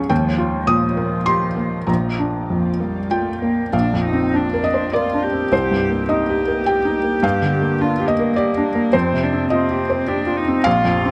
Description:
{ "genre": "neoclassical piano and strings", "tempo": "96-106 BPM", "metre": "3/4", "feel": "rubato", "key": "Bb major", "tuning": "A4 = 442 Hz", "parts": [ { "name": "warm cello", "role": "second line", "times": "0.0-11.1 s", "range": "F3 to G4", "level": "-25 LUFS", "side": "equal", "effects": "none" }, { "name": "felt-muted upright piano", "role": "accompaniment", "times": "0.0-11.1 s", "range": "Bb1 to Eb6", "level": "-20 LUFS", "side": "equal", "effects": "none" }, { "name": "ethereal airy pad", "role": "sustained chords", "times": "0.0-11.1 s", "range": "Ab3 to Eb5", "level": "-31 LUFS", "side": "equal", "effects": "none" } ], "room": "light reverb", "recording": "dark, warm production", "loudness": "-19 LUFS", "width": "mono", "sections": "0.0-3.7 A section; 3.7-11.1 B section", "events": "none", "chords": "0.1 Ebadd9; 1.9 Bb; 3.7 Bbadd9; 5.5 Cm7; 7.2 Gm7; 8.9 Fsus2" }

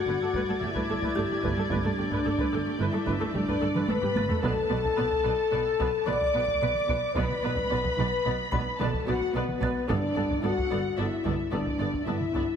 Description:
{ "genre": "cinematic, suspense film score", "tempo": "110 BPM", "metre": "5/4", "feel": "straight", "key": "unclear", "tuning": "A4 = 440 Hz", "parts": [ { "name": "muted symphonic violin section", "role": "melody", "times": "0.0-12.4 s", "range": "D5", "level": "-39 LUFS", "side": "left 2 dB", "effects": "none" }, { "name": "muted symphonic violin section", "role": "second line", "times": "0.0-12.6 s", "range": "B4 to D6", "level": "-36 LUFS", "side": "left 1 dB", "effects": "none" }, { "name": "dark French horn section", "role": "sustained chords", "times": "0.0-12.6 s", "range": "B3 to D5", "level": "-28 LUFS", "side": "left 3 dB", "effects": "none" }, { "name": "muted symphonic violin section", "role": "texture", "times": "0.0-4.1 s", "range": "D6 to G#6", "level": "-38 LUFS", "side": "left 1 dB", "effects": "none" }, { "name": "muted symphonic viola section", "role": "accompaniment", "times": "0.1-12.4 s", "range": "A3 to B4", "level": "-34 LUFS", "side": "right 2 dB", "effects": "none" }, { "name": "muted symphonic cello section", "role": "bass", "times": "0.1-12.4 s", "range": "G2 to B2", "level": "-34 LUFS", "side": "right 3 dB", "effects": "none" }, { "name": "muted symphonic double bass section", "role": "bass", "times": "0.1-12.4 s", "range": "G1 to B1", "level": "-34 LUFS", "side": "right 4 dB", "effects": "none" }, { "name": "taiko ensemble", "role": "drums", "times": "0.3-12.6 s", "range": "none", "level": "-34 LUFS", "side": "right 1 dB", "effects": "none" }, { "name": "music box", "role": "texture", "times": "1.2-11.2 s", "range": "G4 to B6", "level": "-38 LUFS", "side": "right 2 dB", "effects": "none" } ], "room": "moderate scoring stage reverb, RT60 2.0 s", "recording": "heavily compressed radio sound", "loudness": "-25 LUFS", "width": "side -8 dB against mid", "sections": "0.0-12.6 A section", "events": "drum fill 3.8-4.4", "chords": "0.0 Gadd9; 4.4 Bm7; 9.9 Gadd9" }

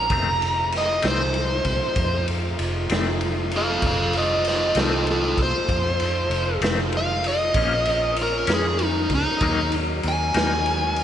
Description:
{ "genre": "slow blues", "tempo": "64 BPM (dotted quarters)", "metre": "12/8", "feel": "straight", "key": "unclear", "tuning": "A4 = 440 Hz", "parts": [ { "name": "dark smooth lead guitar", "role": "melody", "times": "0.0-11.0 s", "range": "Eb4 to Bb5", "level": "-23 LUFS", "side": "equal", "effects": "overdrive, slapback echo" }, { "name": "tonewheel organ", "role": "sustained chords", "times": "0.0-11.0 s", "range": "F3 to Bb4", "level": "-33 LUFS", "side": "right 1 dB", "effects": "slow rotary speaker" }, { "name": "vintage muted fingered electric bass", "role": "bass", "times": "0.0-11.0 s", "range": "F1 to F2", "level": "-27 LUFS", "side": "equal", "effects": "none" }, { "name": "semi-hollow electric guitar", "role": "accompaniment", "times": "0.1-10.5 s", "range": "F2 to Eb4", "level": "-30 LUFS", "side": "left 6 dB", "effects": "tremolo, slapback echo" }, { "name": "clear saxophone section", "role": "sustained chords", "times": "0.1-11.0 s", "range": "A3 to Gb4", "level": "-33 LUFS", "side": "equal", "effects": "none" }, { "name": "raw garage drum kit", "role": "drums", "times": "0.1-11.0 s", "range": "kick drum, ride cymbal, snare drum", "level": "-26 LUFS", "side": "equal", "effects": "none" } ], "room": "moderate concert hall reverb, RT60 2.2 s", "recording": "big arena sound, nothing above 10.7 kHz", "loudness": "-20 LUFS", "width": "side -10 dB against mid", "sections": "0.0-11.0 A section", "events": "lead electric guitar solo 0.0-11.0", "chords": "0.1 F7; 7.5 Bbm; 9.4 Ebm" }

